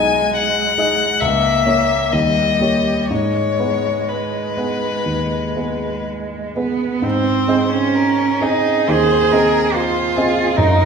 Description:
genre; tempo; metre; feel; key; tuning
classical, slow romantic movement for piano trio; 59-74 BPM; 4/4; rubato; G# minor, Ab major from 7.0 s; A4 = 442 Hz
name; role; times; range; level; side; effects
clear violin; melody; 0.0-10.9 s; Ab4 to G#5; -20 LUFS; left 7 dB; none
clear cello; second line; 0.0-10.9 s; G3 to Ab4; -19 LUFS; right 5 dB; none
warm baby grand piano; accompaniment; 0.0-10.9 s; B1 to D#5; -20 LUFS; left 1 dB; none
room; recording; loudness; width
wet scoring stage reverb, RT60 1.8 s; minimal, uncompressed stereo recording; -15 LUFS; side -6 dB against mid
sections
0.0-7.0 A section; 7.0-10.9 B section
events
none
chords
0.0 G#m/B; 1.2 A#dim/C#; 2.1 D#7; 3.1 G#m; 7.0 Ab

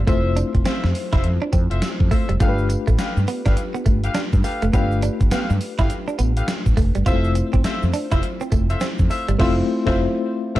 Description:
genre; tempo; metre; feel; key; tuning
R&B, new jack swing; 103 BPM; 4/4; swing 62% on 16ths; unclear; A4 = 440 Hz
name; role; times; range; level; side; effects
FM electric piano with auto-pan; accompaniment; 0.0-10.6 s; G3 to C5; -25 LUFS; left 3 dB; none
direct-recorded clean electric guitar; riff; 0.0-9.4 s; G3 to F4; -27 LUFS; right 5 dB; lush chorus
mellow fretless electric bass; bass; 0.0-10.6 s; F1 to G2; -20 LUFS; equal; analog chorus
warm horn section; stabs; 0.1-10.6 s; F4 to F5; -30 LUFS; left 2 dB; digital delay
gated 80s digital drum machine; drums; 0.1-10.6 s; crash cymbal, hi-hat, kick drum, snare drum, tambourine; -21 LUFS; equal; gated reverb, gated reverb snare
tube shaker; percussion; 2.4-9.4 s; none; -48 LUFS; right 6 dB; none
room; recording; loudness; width
digital ambience; dark, warm production; -17 LUFS; side -15 dB against mid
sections
0.0-10.6 A section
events
band accent 9.4-10.6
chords
0.0 Fmaj7; 2.4 G9; 7.1 Fmaj7

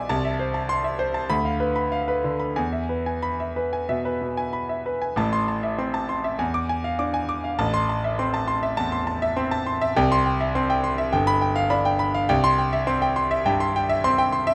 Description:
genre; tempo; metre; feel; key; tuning
classical, virtuoso piano study; 89-105 BPM; 4/4; rubato; A minor; A4 = 440 Hz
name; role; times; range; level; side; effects
clear concert grand piano; solo; 0.0-14.5 s; G1 to D6; -24 LUFS; equal; none
room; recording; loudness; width
light reverb; close, detailed microphones; -24 LUFS; mono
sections
0.0-5.2 A section; 5.2-14.5 B section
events
none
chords
0.1 Am/C; 1.3 Bdim/D; 2.6 E; 5.2 Am; 6.4 E7b9; 7.6 Am; 10.0 C; 11.1 G7; 12.3 C

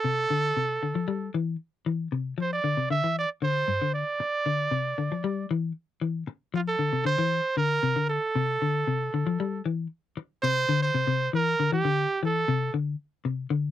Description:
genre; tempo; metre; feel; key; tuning
afrobeat; 116 BPM; 4/4; straight; D minor; A4 = 440 Hz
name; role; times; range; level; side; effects
bright trumpet; melody; 0.0-12.7 s; F4 to E5; -26 LUFS; right 4 dB; none
clean electric guitar; arpeggios; 0.0-13.7 s; G2 to G3; -27 LUFS; left 5 dB; none
room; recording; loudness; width
little or no reverb; dry, close 1970s-style studio recording; -25 LUFS; side -12 dB against mid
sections
0.0-10.4 A section; 10.4-13.7 B section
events
none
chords
0.0 D7(no3); 1.1 Em; 2.1 Dm7; 3.2 Gsus4 (rootless); 4.2 Dm7; 5.2 Em; 6.3 Dm7; 7.3 C7sus2; 8.4 D7(no3); 9.4 Em; 10.4 Cadd9; 11.5 Gm69/D; 12.5 Amadd11/C

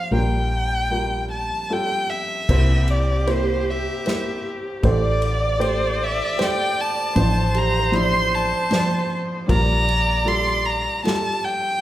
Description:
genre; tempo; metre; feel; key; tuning
acoustic folk-pop ballad; 77 BPM; 3/4; straight; unclear; A4 = 438 Hz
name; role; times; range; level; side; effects
warm violin; melody; 0.0-11.8 s; C5 to C6; -23 LUFS; equal; none
warm upright piano; accompaniment; 0.0-11.8 s; A1 to C5; -26 LUFS; equal; none
woody fretless electric bass; bass; 0.1-10.9 s; A1 to C2; -22 LUFS; equal; none
clear viola; second line; 2.5-11.4 s; G4 to D5; -27 LUFS; left 1 dB; none
unplugged drum kit; drums; 2.5-11.2 s; crash cymbal, kick drum, ride cymbal, snare drum; -26 LUFS; equal; none
felt-muted upright piano; arpeggios; 3.3-10.1 s; G4 to D5; -31 LUFS; right 7 dB; none
room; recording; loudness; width
wet recital hall reverb, RT60 1.4 s; recorded in a church or concert hall; -18 LUFS; side -13 dB against mid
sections
0.0-2.5 A section; 2.5-11.8 A section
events
none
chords
0.1 Gm7/Bb; 2.5 C7; 4.8 Am7; 7.2 Dm7/A; 9.5 Gm7/Bb

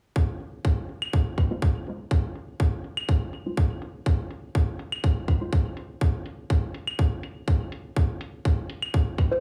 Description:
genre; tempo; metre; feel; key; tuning
minimal techno; 123 BPM; 4/4; swing 53% on 16ths; F minor; A4 = 440 Hz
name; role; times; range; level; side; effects
electronic kick drum; drums; 0.2-9.3 s; none; -26 LUFS; equal; none
electronic hi-hat; drums; 0.4-9.3 s; none; -49 LUFS; equal; low-pass filter on hats
claves; percussion; 1.0-8.9 s; none; -33 LUFS; equal; tape echo
filtered dub chord stab; stabs; 1.5-5.5, 9.3-9.4 s; Ab3 to C5; -34 LUFS; equal; phaser, analog chorus, tape echo
room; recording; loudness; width
digital ambience; small room ambience; -27 LUFS; mono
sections
0.2-9.4 A section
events
filter sweep on drum 0.2-9.4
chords
0.2 Fm

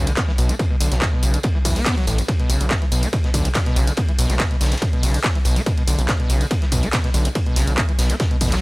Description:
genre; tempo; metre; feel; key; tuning
driving peak-time techno; 142 BPM; 4/4; straight; B minor; A4 = 441 Hz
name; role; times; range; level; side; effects
screaming distorted acid line; riff; 0.0-8.6 s; B1 to B3; -26 LUFS; equal; distortion, chorus, sidechain pumping, tape echo
gritty driven synth bass; bass; 0.0-8.6 s; A1 to B1; -20 LUFS; equal; sidechain pumping
punchy analog drum machine; drums; 0.1-8.6 s; handclaps, hi-hat, ride cymbal, tambourine; -25 LUFS; equal; sidechain pumping on hats, sidechain pumping on perc, sidechain pumping on cymbals
raw garage drum kit; drums; 0.1-8.5 s; hi-hat, ride cymbal, snare drum; -33 LUFS; equal; sidechain pumping on cymbals, high-pass filter on cymbals, sidechain pumping on hats, high-pass filter on hats, high-pass filter on snare, high-pass filter on room
electronic kick drum; drums; 0.2-8.5 s; none; -20 LUFS; equal; none
room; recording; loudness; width
small room ambience; dry, gritty hardware recording; -17 LUFS; side -23 dB against mid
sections
0.0-8.6 A section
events
none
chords
0.0 B5

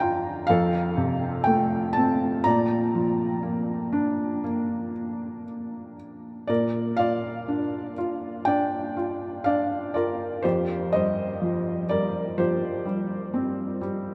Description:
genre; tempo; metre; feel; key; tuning
classical, lyrical solo piano; 61 BPM; 4/4; rubato; Bb major; A4 = 439 Hz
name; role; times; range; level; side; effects
felt-muted upright piano; solo; 0.0-14.1 s; F2 to Bb5; -26 LUFS; equal; none
room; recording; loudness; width
wet huge ambient reverb, RT60 8.5 s; in a vast, echoing space; -26 LUFS; mono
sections
0.0-6.5 A section; 6.5-14.1 B section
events
none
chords
0.5 F; 2.5 Bb; 10.4 Fsus2

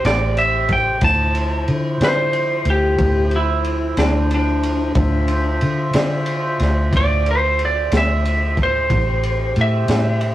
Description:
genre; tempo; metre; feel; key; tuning
slow blues; 61 BPM (dotted quarters); 12/8; straight; unclear; A4 = 440 Hz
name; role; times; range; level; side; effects
lightly driven lead guitar; melody; 0.0-10.3 s; D4 to A5; -19 LUFS; equal; none
tonewheel organ; sustained chords; 0.0-10.3 s; F3 to E5; -26 LUFS; equal; overdrive, slow rotary speaker
vintage muted fingered electric bass; bass; 0.0-10.3 s; A1 to D3; -19 LUFS; equal; none
crunchy breakbeat drum kit; drums; 0.0-10.3 s; kick drum, ride cymbal, snare drum; -24 LUFS; equal; none
room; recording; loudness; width
moderate studio ambience, RT60 0.5 s; rough rehearsal-room recording; -15 LUFS; side -14 dB against mid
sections
0.0-10.3 A section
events
lead electric guitar solo 0.0-10.3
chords
0.0 Am7; 1.0 Dm9; 8.9 Am7

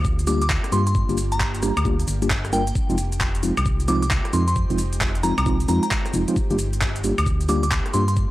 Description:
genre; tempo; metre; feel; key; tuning
UK garage, two-step garage; 133 BPM; 4/4; swing 64% on 16ths; G phrygian; A4 = 440 Hz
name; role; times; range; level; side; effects
ethereal airy pad; sustained chords; 0.0-8.3 s; Ab3 to G4; -35 LUFS; right 1 dB; ensemble chorus, built-in reverb, phaser, sidechain pumping
organ-like FM bass; bass; 0.0-8.3 s; F1 to G2; -23 LUFS; equal; sidechain pumping
electronic kick drum; drums; 0.0-8.3 s; none; -24 LUFS; equal; none
garage drum kit; drums; 0.0-8.3 s; handclaps, hi-hat, rim click, shaker, woodblock; -27 LUFS; left 1 dB; none
glassy synth bell; melody; 0.3-8.1 s; G5 to D6; -28 LUFS; right 1 dB; chorus, tremolo, tape echo
mellow tine electric piano; stabs; 0.3-8.0 s; F3 to Bb4; -25 LUFS; equal; medium stereo tremolo, tape echo
room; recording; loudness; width
little or no reverb; dry, gritty hardware recording, vinyl crackle; -19 LUFS; side -16 dB against mid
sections
0.0-8.3 A section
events
none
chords
0.0 Gm7; 2.8 Fm7; 6.4 Gm7

